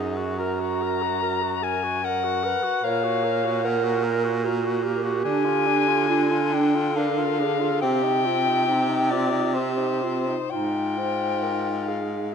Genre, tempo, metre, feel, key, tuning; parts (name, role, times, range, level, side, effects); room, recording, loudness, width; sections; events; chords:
classical, lyrical piece for single-reed quartet; 59-76 BPM; 3/4; rubato; A4 = 440 Hz
warm soprano saxophone; melody; 0.0-12.3 s; C5 to Bb5; -26 LUFS; left 7 dB
dark clarinet; second line; 0.0-12.3 s; D4 to Db5; -27 LUFS; right 7 dB
clear tenor saxophone; accompaniment; 0.0-12.2 s; C4 to Bb4; -30 LUFS; left 3 dB
clear baritone saxophone; bass; 0.0-12.3 s; Gb2 to D3; -26 LUFS; right 2 dB
moderate recital hall reverb, RT60 1.5 s; dark, warm production; -21 LUFS; side -6 dB against mid
0.0-12.3 A section
0.4 Gb; 2.8 Gb/Bb; 5.3 Ddim; 7.8 Cm; 10.5 Fm/Ab